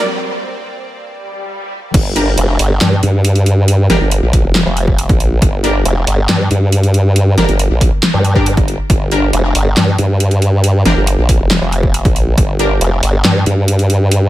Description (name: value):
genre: heavy wobble dubstep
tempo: 138 BPM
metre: 4/4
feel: half-time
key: G minor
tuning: A4 = 440 Hz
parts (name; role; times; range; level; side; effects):
- supersaw pad; sustained chords; 0.0-1.9 s; G2 to D5; -28 LUFS; right 2 dB; phaser, sidechain pumping
- riser and swell; sound effects; 0.0-1.9 s; none; -26 LUFS; equal; none
- formant-sweep wobble bass; bass; 1.9-14.3 s; F1 to G2; -12 LUFS; equal; chorus, overdrive
- dubstep drum kit; drums; 1.9-14.2 s; crash cymbal, handclaps, hi-hat, snare drum; -16 LUFS; equal; high-pass filter on snare, small room ambience, high-pass filter on hats, high-pass filter on cymbals
- electronic kick drum; drums; 1.9-12.5 s; none; -14 LUFS; equal; overdrive, small room ambience
- orchestra-hit-like synth stab; stabs; 2.2-12.7 s; D4 to Bb4; -20 LUFS; equal; built-in reverb, digital delay
- formant-sweep wobble bass; bass; 2.4-13.4 s; F1 to G2; -13 LUFS; equal; chorus, overdrive
room: digital ambience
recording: high-pass filter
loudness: -10 LUFS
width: side -15 dB against mid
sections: 0.0-1.9 A section; 1.9-14.3 B section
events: build-up 0.0-1.9; riser 0.0; filter sweep 0.0-1.9; break 0.2-1.9; swell 1.2-1.9; drop 1.9-14.3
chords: 0.0 Gm